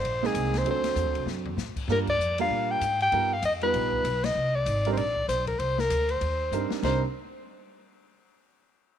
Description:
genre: jazz, small-group swing and bop.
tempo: 194 BPM.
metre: 4/4.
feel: swing 61% on 8ths.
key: C minor.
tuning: A4 = 439 Hz.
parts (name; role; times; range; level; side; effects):
mellow soprano saxophone; melody; 0.0-7.0 s; Ab4 to G5; -26 LUFS; left 2 dB; none.
upright bass; bass; 0.0-7.0 s; Ab1 to Bb2; -31 LUFS; equal; none.
open jazz drum kit; drums; 0.0-6.9 s; crash cymbal, hi-hat, kick drum, ride cymbal, snare drum, toms; -37 LUFS; left 6 dB; none.
warm concert grand piano; accompaniment; 0.2-7.0 s; F#3 to B4; -31 LUFS; right 12 dB; none.
room: light reverb, small room ambience.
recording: 1960s-style stereo with parts hard left and right.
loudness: -24 LUFS.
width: side -9 dB against mid.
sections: 0.0-6.8 A section; 6.8-8.1 B section.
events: drum fill 1.3-1.6, 6.5-6.8; band accent 2.0, 4.2.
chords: 0.0 Abadd9; 0.7 D7; 1.9 Gm7; 3.1 G7alt; 4.4 Cm9.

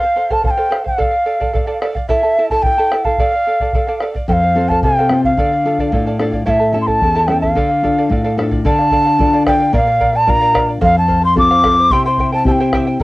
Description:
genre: andean folk, Andean ensemble.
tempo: 110 BPM.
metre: 2/4.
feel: straight.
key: D minor.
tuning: A4 = 440 Hz.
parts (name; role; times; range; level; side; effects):
mellow large quena; melody; 0.0-13.0 s; E5 to D6; -14 LUFS; equal; cassette tape.
charango; accompaniment; 0.0-13.0 s; E4 to A5; -21 LUFS; right 2 dB; cassette tape.
bombo; percussion; 0.3-13.0 s; none; -20 LUFS; equal; none.
nylon-string guitar; accompaniment; 4.3-13.0 s; E2 to Bb4; -17 LUFS; left 2 dB; cassette tape.
room: light reverb.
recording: home recording on cassette.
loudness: -12 LUFS.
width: side -19 dB against mid.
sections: 0.0-8.7 A section; 8.7-13.0 B section.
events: none.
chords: 0.0 F; 1.0 Dm; 2.1 A; 3.2 Dm; 4.3 F; 5.4 Dm; 6.5 A; 7.6 Dm; 9.7 Bb; 10.8 F; 11.9 C.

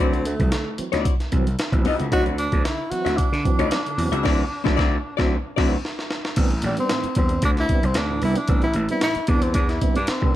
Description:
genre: funk.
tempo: 113 BPM.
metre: 4/4.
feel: straight.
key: A dorian.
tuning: A4 = 436 Hz.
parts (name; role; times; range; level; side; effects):
breathy tenor saxophone; melody; 0.0-10.4 s; G3 to F#4; -25 LUFS; equal; slapback echo, plate reverb.
hollow-body jazz guitar; accompaniment; 0.0-5.8 s; C4 to E5; -25 LUFS; left 8 dB; none.
tonewheel organ; stabs; 0.0-10.4 s; A2 to D4; -28 LUFS; right 4 dB; overdrive, chorus vibrato, slow rotary speaker.
gritty slap bass; bass; 0.0-10.3 s; A1 to D3; -24 LUFS; equal; overdrive.
breakbeat sampler-style drum kit; drums; 0.1-10.3 s; crash cymbal, hi-hat, kick drum, snare drum; -23 LUFS; equal; none.
room: light reverb.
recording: dark, warm production.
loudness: -19 LUFS.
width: side -13 dB against mid.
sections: 0.0-6.4 A section; 6.4-10.4 B section.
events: band accent 4.2-6.4; drum fill 5.8-6.4; tenor saxophone solo 6.4-10.4.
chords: 0.0 D9; 6.4 Am11.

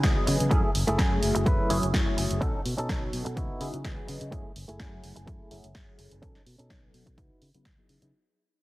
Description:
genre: filtered disco house.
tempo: 126 BPM.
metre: 4/4.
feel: swing 54% on 16ths.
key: F# dorian.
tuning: A4 = 441 Hz.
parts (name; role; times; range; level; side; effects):
funky polysynth comp; accompaniment; 0.0-8.1 s; E3 to D#5; -32 LUFS; equal; chorus, phaser, sidechain pumping, low-pass filter.
fingered electric bass; bass; 0.0-8.1 s; F#1 to C#3; -31 LUFS; equal; sidechain pumping, low-pass filter.
electronic kick drum; drums; 0.0-7.8 s; none; -28 LUFS; equal; none.
punchy analog drum machine; drums; 0.0-8.1 s; hi-hat, snare drum; -33 LUFS; equal; sidechain pumping on hats.
direct-recorded clean electric guitar; riff; 0.2-7.9 s; A3 to B4; -32 LUFS; equal; sidechain pumping, low-pass filter.
room: light reverb.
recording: heavily compressed radio sound, multiband compression.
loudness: -24 LUFS.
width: side -18 dB against mid.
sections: 0.0-8.1 A section.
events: fade-out 0.0-8.1; filter sweep on fingered electric bass 0.0-8.1; filter sweep 0.0-8.1.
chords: 0.0 C#m11; 0.5 F#m9; 2.4 B9; 3.4 C#m11; 4.3 F#m9; 6.2 B9; 7.2 C#m11.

